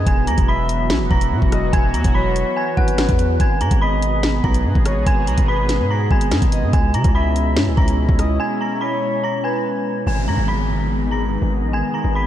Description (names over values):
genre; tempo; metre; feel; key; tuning
hip hop, drill; 144 BPM; 4/4; half-time; G# minor; A4 = 440 Hz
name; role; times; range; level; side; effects
dark detuned synth bell; melody; 0.0-12.3 s; F#5 to B6; -24 LUFS; right 1 dB; chorus, ping-pong delay
breathy flute-like synth lead; second line; 0.0-10.0 s; B4 to E5; -28 LUFS; left 3 dB; chorus, ping-pong delay
sweeping resonant pad; sustained chords; 0.0-12.3 s; B2 to G#4; -24 LUFS; right 1 dB; chorus
distorted 808-style bass; bass; 0.0-12.3 s; E1 to C#3; -20 LUFS; equal; distortion
drill drum kit; drums; 0.1-8.3 s; hi-hat, kick drum, rim click, snare drum; -19 LUFS; equal; vintage 12-bit sampler grit
downlifter; sound effects; 10.1-12.3 s; none; -29 LUFS; right 3 dB; none
room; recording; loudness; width
moderate cathedral reverb, RT60 5.0 s; dreamy mix soaked in reverb; -16 LUFS; side -11 dB against mid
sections
0.0-10.1 A section; 10.1-12.3 B section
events
break 8.4-10.1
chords
0.1 Esus2; 3.4 G#m; 6.7 C#m; 10.1 G#m